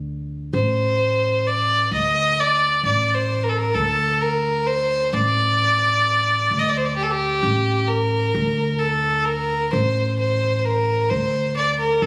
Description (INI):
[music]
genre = arabic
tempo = 130 BPM (eighths)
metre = 10/8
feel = straight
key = D maqam hijaz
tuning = A4 = 438 Hz
[part]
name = upright bass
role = bass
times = 0.0-12.1 s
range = A1 to D2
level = -26 LUFS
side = equal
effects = none
[part]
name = rich violin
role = melody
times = 0.5-12.1 s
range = G4 to Eb5+26c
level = -21 LUFS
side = equal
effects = slapback echo
[sound]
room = moderate recital hall reverb, RT60 1.5 s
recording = recorded on a phone in the room, club reverb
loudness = -20 LUFS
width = mono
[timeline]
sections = 0.0-12.1 A section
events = none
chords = none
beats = 0.08 0.54 1.00 1.46 1.92 2.37 2.83 3.29 | 3.75 4.21 4.67 5.13 5.59 6.05 6.51 6.97 7.43 7.89 | 8.35 8.81 9.27 9.73 10.19 10.65 11.11 11.57 12.03